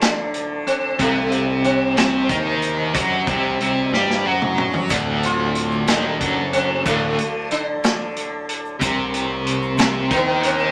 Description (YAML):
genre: psychedelic rock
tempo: 62 BPM (dotted quarters)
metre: 6/8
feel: straight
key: unclear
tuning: A4 = 443 Hz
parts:
  - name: sitar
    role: melody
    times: 0.0-10.7 s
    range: A3 to F4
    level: -25 LUFS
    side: equal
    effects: none
  - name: mellow tonewheel organ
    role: sustained chords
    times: 0.0-10.7 s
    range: A4 to C6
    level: -34 LUFS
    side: equal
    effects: chorus vibrato
  - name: tanpura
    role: drone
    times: 0.0-10.7 s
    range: D2 to D4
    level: -34 LUFS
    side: equal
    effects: none
  - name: vintage drum kit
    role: drums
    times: 0.0-10.6 s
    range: hi-hat, kick drum, snare drum, toms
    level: -25 LUFS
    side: equal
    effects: none
  - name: cranked stack guitar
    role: riff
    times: 1.0-10.7 s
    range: D2 to G4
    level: -22 LUFS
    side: equal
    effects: overdrive, tremolo
  - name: fuzz picked electric bass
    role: bass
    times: 1.0-10.7 s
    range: D1 to G2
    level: -29 LUFS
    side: equal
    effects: overdrive
  - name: egg shaker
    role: percussion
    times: 4.9-10.7 s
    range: none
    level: -47 LUFS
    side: equal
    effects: none
room: moderate studio reverb, RT60 0.8 s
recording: none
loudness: -20 LUFS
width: mono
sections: 0.0-10.7 A section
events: sitar solo 0.0-10.7; drum fill 3.9-4.9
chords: 0.0 D; 1.0 Cm7; 4.9 D; 8.8 Cm7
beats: 0.02 | 1.00 1.98 | 2.95 3.93 | 4.91 5.88 | 6.86 7.83 | 8.80 9.78